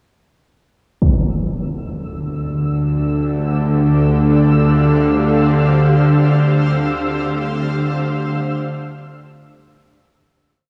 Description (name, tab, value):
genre	dark ambient drone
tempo	free time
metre	none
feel	none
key	unclear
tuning	A4 = 440 Hz
part	granular cloud pad	sustained chords	2.5-10.4 s	D4 to F5	-24 LUFS	equal	built-in reverb
part	bowed-like drone	drone	2.2-10.6 s	D2 to D3	-17 LUFS	equal	built-in reverb
part	impact	percussion	1.0-1.3 s	none	-22 LUFS	equal	low-pass filter on sfx
part	flickering grainy texture	texture	2.1-10.5 s	E6	-33 LUFS	equal	built-in reverb
room	wet huge ambient reverb, RT60 7.3 s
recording	in a vast, echoing space, studio reverb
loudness	-16 LUFS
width	mono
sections	1.0-10.4 A section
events	fade-in on ambient pad 1.0-10.4; fade-in on synth texture 1.0-10.4; fade-out 5.7-10.4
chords	1.0 Csus4/D